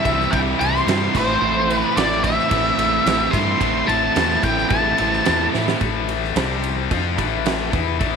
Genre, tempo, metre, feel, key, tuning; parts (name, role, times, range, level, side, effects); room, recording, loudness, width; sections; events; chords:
classic rock; 109 BPM; 4/4; straight; A minor; A4 = 440 Hz
octave-fuzz lead guitar; melody; 0.0-5.5 s; C5 to C6; -20 LUFS; left 1 dB; wah, distortion
distorted electric guitar; riff; 0.0-8.2 s; A2 to F4; -23 LUFS; left 15 dB; distortion
overdriven semi-hollow guitar; riff; 0.0-5.8 s; A2 to E4; -24 LUFS; right 14 dB
growling fingered electric bass; bass; 0.1-8.2 s; A1 to A2; -26 LUFS; left 1 dB; overdrive
big rock drum kit; drums; 0.1-8.1 s; crash cymbal, kick drum, ride cymbal, snare drum; -24 LUFS; right 5 dB
light reverb, small room reverb; 1960s-style stereo with parts hard left and right; -16 LUFS; side -6 dB against mid
0.0-5.8 A section; 5.8-8.2 B section
drum fill 5.5
0.0 C; 1.1 Am; 5.8 A5; 6.4 C5; 6.9 Am